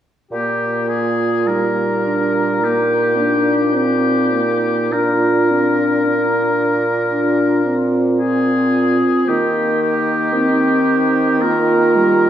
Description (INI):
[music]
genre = classical, slow romantic movement for wind quintet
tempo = 51-57 BPM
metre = 4/4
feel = rubato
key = Eb major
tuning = A4 = 441 Hz
[part]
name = warm oboe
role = second line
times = 0.3-12.3 s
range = G4 to Bb4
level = -20 LUFS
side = left 2 dB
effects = none
[part]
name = dark French horn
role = accompaniment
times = 0.3-12.3 s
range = G3 to D4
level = -19 LUFS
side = left 2 dB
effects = none
[part]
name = dark clarinet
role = accompaniment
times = 0.3-12.3 s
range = C4 to F4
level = -21 LUFS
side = right 4 dB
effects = none
[part]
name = warm bassoon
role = bass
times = 0.3-12.3 s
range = Bb2 to Eb3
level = -20 LUFS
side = right 2 dB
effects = none
[sound]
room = wet recital hall reverb, RT60 1.5 s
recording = heard from further back in the room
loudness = -14 LUFS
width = side -10 dB against mid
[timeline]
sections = 0.3-12.3 A section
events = none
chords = 0.3 Eb/Bb; 4.9 Bb9; 9.3 Eb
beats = | 0.33 1.48 2.63 3.76 | 4.93 6.05 7.12 8.19 | 9.29 10.35 11.43